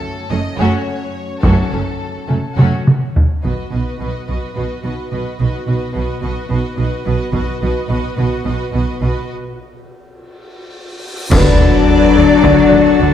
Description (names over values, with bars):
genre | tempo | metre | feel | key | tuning
cinematic, epic orchestral film score | 213 BPM (eighths) | 7/8 | straight | B mixolydian | A4 = 440 Hz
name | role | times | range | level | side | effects
rich studio violin section | melody | 0.0-13.1 s | A4 to D#5 | -28 LUFS | left 4 dB | none
mellow French horn section | sustained chords | 0.0-3.1, 11.3-13.1 s | F#3 to D4 | -15 LUFS | left 8 dB | none
clear symphonic violin section | second line | 0.3-13.1 s | A3 to B4 | -26 LUFS | left 2 dB | none
rich symphonic viola section | accompaniment | 0.3-13.1 s | F#3 to F#4 | -23 LUFS | right 1 dB | none
rich symphonic cello section | bass | 0.3-13.1 s | F#2 to D3 | -22 LUFS | right 2 dB | none
rich symphonic double bass section | bass | 0.3-13.1 s | F#1 to D2 | -21 LUFS | right 3 dB | none
solo taiko drums | drums | 1.4-13.0 s | none | -15 LUFS | equal | none
cymbal swell, clash cymbals and concert bass drum | percussion | 7.3-12.4 s | none | -19 LUFS | right 1 dB | none
cymbal swell and impact | sound effects | 11.0-13.1 s | none | -24 LUFS | equal | none
mellow hollow concert flute | second line | 11.3-13.1 s | D5 | -22 LUFS | left 1 dB | none
pipe organ, foundations | sustained chords | 11.3-13.1 s | D4 to A5 | -19 LUFS | left 2 dB | none
room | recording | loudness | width
moderate scoring stage reverb, RT60 2.0 s | dark, warm production | -13 LUFS | side -10 dB against mid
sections
0.0-3.4 A section; 3.4-11.3 B section; 11.3-13.1 C section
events
drum fill 2.6-3.4, 10.5-11.3; break 9.3-11.3; cymbal swell 11.0-11.3; band accent 11.3-11.9; impact 11.3-13.1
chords
0.0 F#m; 3.4 B; 9.3 N.C.; 11.3 D